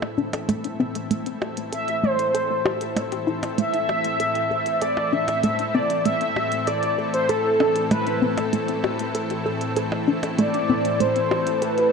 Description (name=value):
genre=ambient, sequencer-driven space music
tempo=97 BPM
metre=4/4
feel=straight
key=A minor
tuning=A4 = 440 Hz
part: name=lush unison pad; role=sustained chords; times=0.0-11.9 s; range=A2 to E5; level=-28 LUFS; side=left 1 dB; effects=chorus
part: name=electronic percussion blips and hi-hat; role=percussion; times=0.0-11.9 s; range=none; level=-33 LUFS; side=right 3 dB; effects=ping-pong delay
part: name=hollow square pluck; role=riff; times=0.2-11.9 s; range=A3 to A4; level=-26 LUFS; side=left 1 dB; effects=chorus, ping-pong delay
part: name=mellow horn-like synth lead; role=melody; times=1.7-11.9 s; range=A4 to E5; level=-23 LUFS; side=equal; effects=ensemble chorus, ping-pong delay
room=wet scoring stage reverb, RT60 2.1 s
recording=cassette tape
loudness=-20 LUFS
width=side -5 dB against mid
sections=0.0-11.9 A section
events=fade-in on analog synth pad 0.0-11.9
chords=0.0 Am